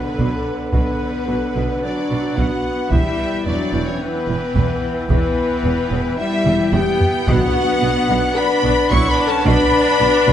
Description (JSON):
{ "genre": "cinematic, epic orchestral film score", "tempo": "110 BPM", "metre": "4/4", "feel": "straight", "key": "B minor", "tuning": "A4 = 440 Hz", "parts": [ { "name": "rich symphonic violin section", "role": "melody", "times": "0.0-10.3 s", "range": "B4 to C#6", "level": "-25 LUFS", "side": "left 1 dB", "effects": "none" }, { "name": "mellow flute section", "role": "second line", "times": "0.0-10.3 s", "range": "B4 to C#6", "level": "-28 LUFS", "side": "left 3 dB", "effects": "none" }, { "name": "warm chamber violin section", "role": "second line", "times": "0.0-10.3 s", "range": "B4 to C#6", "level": "-28 LUFS", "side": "left 3 dB", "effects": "none" }, { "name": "clear symphonic viola section", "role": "accompaniment", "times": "0.0-10.3 s", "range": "D3 to E4", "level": "-23 LUFS", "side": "equal", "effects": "none" }, { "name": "chamber organ, principal", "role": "sustained chords", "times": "0.0-10.3 s", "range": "B3 to G5", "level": "-26 LUFS", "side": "right 1 dB", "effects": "none" }, { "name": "mellow French horn section", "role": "sustained chords", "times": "0.0-10.3 s", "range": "B3 to C#5", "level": "-22 LUFS", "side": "left 4 dB", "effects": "none" }, { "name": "impact", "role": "sound effects", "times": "0.0-0.7 s", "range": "none", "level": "barely audible", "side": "none", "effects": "none" }, { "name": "clear symphonic cello section", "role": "bass", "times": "0.2-10.3 s", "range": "E2 to B2", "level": "-24 LUFS", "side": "right 3 dB", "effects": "none" }, { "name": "rich symphonic double bass section", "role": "bass", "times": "0.2-10.3 s", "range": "E1 to B1", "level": "-24 LUFS", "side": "right 3 dB", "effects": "none" }, { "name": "taiko ensemble", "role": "drums", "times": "0.2-10.0 s", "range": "none", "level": "-22 LUFS", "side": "equal", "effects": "none" }, { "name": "timpani", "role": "percussion", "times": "7.3-8.1 s", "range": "B2", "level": "-29 LUFS", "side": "equal", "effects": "none" } ], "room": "wet scoring stage reverb, RT60 1.4 s", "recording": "nothing above 10.9 kHz", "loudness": "-15 LUFS", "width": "side -10 dB against mid", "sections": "0.0-10.3 A section", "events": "impact 0.0-0.7; drum fill 6.5-7.3", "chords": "0.0 Bm; 2.9 Em; 7.3 Bm", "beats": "0.19 | 0.74 1.29 1.84 2.38 | 2.93 3.47 4.02 4.56 | 5.10 5.65 6.19 6.73 | 7.28 7.83 8.38 8.92 | 9.46 10.01" }